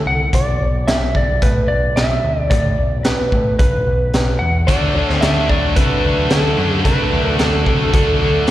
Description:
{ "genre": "classic rock", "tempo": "110 BPM", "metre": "4/4", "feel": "straight", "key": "D mixolydian", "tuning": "A4 = 441 Hz", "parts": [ { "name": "overdriven picked electric bass", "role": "bass", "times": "0.0-8.5 s", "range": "B1 to C3", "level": "-19 LUFS", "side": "equal", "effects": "none" }, { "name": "electric slide guitar", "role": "melody", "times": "0.1-8.5 s", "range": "A4 to F#5", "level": "-20 LUFS", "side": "equal", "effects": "slapback echo, digital delay" }, { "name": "raw garage drum kit", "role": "drums", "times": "0.3-8.5 s", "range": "hi-hat, kick drum, snare drum", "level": "-19 LUFS", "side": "equal", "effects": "none" }, { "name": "crunchy overdriven guitar", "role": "riff", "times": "4.7-8.5 s", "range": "D3 to D4", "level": "-24 LUFS", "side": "equal", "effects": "slapback echo" }, { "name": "distorted electric guitar", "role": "riff", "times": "4.7-8.5 s", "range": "D3 to F#4", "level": "-22 LUFS", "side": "right 10 dB", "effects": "overdrive, slapback echo" }, { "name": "tight distorted guitar", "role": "riff", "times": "4.7-8.5 s", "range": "D3 to D4", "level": "-22 LUFS", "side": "left 11 dB", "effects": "distortion, slapback echo" } ], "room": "small room ambience", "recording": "live gig heard through the venue's PA, recital hall reverb", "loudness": "-14 LUFS", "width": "side -14 dB against mid", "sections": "0.0-8.5 A section", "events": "none", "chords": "0.3 Bm; 4.7 D", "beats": "| 0.33 0.87 1.42 1.96 | 2.51 3.05 3.60 4.14 | 4.68 5.22 5.77 6.31 | 6.85 7.39 7.93 8.47" }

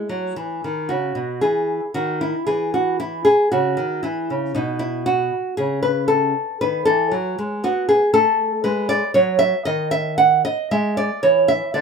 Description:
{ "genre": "classical, baroque-style dance for nylon-string guitar", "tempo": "58 BPM", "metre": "3/4", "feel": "rubato", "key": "E major", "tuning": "A4 = 440 Hz", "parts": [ { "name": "nylon-string guitar", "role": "solo", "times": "0.0-11.8 s", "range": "B2 to F#5", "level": "-17 LUFS", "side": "equal", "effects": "none" } ], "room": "moderate studio ambience, RT60 0.5 s", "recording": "minimal, uncompressed stereo recording", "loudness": "-17 LUFS", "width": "side -5 dB against mid", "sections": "0.0-11.8 A section", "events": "none", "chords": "0.4 Badd11; 1.4 Emaj9/D#; 3.5 C#madd11; 4.6 B13; 6.6 D#dim; 7.6 B5; 9.7 N.C.; 10.7 E7", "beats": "0.36 | 1.42 2.47 3.52 | 4.55 5.58 6.61 | 7.64 8.66 9.68 | 10.73 11.76" }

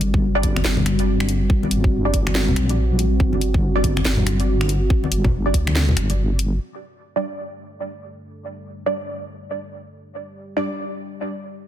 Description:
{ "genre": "deep dubstep", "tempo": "141 BPM", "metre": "4/4", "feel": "swing 61% on 16ths, half-time", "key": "unclear", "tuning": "A4 = 441 Hz", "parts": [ { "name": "dark analog pad", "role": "sustained chords", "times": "0.0-11.7 s", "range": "G3 to A4", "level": "-26 LUFS", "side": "equal", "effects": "chorus" }, { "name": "deep soft wobble bass", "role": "bass", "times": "0.0-6.6 s", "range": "G1 to D2", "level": "-20 LUFS", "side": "equal", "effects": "chorus, tube saturation" }, { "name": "garage drum kit", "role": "drums", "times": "0.0-6.5 s", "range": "finger snaps, hi-hat, snare drum", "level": "-25 LUFS", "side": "left 1 dB", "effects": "low-pass filter on hats, low-pass filter on snare" }, { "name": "electronic kick drum", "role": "drums", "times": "0.1-5.6 s", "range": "none", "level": "-19 LUFS", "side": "equal", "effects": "none" }, { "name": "filtered dub chord stab", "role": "stabs", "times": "0.4-10.7 s", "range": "G3 to D5", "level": "-27 LUFS", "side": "right 2 dB", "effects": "phaser, ensemble chorus, dub echo" }, { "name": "congas", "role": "percussion", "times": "0.6-6.0 s", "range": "none", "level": "-27 LUFS", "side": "left 2 dB", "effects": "none" } ], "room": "light reverb", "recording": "dense, heavily limited modern master", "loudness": "-18 LUFS", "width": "side -11 dB against mid", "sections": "0.0-6.6 A section; 6.6-11.7 B section", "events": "filter sweep on analog synth pad 6.6-11.7", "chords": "0.0 G5", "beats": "0.22 0.65 1.07 | 1.50 1.93 2.35 2.78 | 3.20 3.63 4.05 4.48 | 4.90 5.33 5.75 6.18 | 6.61 7.03 7.46 7.88 | 8.31 8.73 9.16 9.59 | 10.01 10.44 10.86 11.29" }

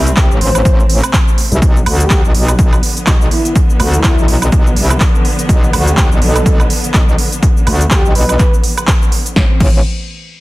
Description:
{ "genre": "bass house", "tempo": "124 BPM", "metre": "4/4", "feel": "swing 57% on 16ths", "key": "unclear", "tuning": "A4 = 440 Hz", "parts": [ { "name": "warm studio string section", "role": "sustained chords", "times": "0.0-9.6 s", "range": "A2 to C4", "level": "-22 LUFS", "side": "equal", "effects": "sidechain pumping" }, { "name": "metallic wobble bass", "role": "bass", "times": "0.0-9.8 s", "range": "A1 to D2", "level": "-14 LUFS", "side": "equal", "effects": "chorus, tube saturation, sidechain pumping" }, { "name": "big-room dance drum kit", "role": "drums", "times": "0.1-9.7 s", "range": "crash cymbal, handclaps, hi-hat, shaker, snare drum, woodblock", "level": "-18 LUFS", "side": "right 2 dB", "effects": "overdrive" }, { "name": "breathy flute-like synth lead", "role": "melody", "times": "0.2-8.5 s", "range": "E4 to C5", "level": "-21 LUFS", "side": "equal", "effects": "analog chorus, cassette tape, tape echo" }, { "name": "electronic kick drum", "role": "drums", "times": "0.2-9.7 s", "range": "none", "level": "-12 LUFS", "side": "equal", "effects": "overdrive" } ], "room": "digital ambience", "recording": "dense, heavily limited modern master", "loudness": "-9 LUFS", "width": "side -19 dB against mid", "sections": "0.0-9.4 A section; 9.4-10.4 B section", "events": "drop 0.0-9.4", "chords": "0.0 Am; 1.6 Bdim; 9.4 Amadd9", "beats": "0.17 0.65 1.14 | 1.62 2.10 2.59 3.07 | 3.56 4.04 4.52 5.01 | 5.49 5.97 6.46 6.94 | 7.43 7.91 8.39 8.88 | 9.36" }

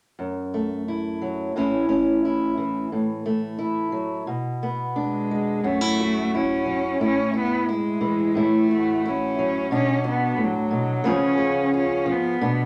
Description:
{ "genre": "acoustic folk-pop ballad", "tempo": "88 BPM", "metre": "4/4", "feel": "straight", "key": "F# minor", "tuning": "A4 = 440 Hz", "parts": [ { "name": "fingerpicked steel-string acoustic guitar", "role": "accompaniment", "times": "0.2-12.7 s", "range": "F#2 to G#4", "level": "-25 LUFS", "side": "equal", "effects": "none" }, { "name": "warm cello", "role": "melody", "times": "5.0-12.7 s", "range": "F#3 to C#4", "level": "-27 LUFS", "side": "equal", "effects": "none" } ], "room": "light reverb", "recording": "none", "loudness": "-23 LUFS", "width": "mono", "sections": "0.2-5.6 A section; 5.6-12.7 B section", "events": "none", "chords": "0.2 F#m7; 1.6 A; 2.9 F#m7/A; 4.3 G#dim/B; 5.6 F#m7; 7.0 A5; 8.4 F#m7/A; 9.7 Bm9; 11.1 C#7", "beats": "| 0.18 0.87 1.55 2.23 | 2.90 3.58 4.26 4.95 | 5.63 6.32 7.00 7.68 | 8.36 9.03 9.70 10.38 | 11.05 11.73 12.41" }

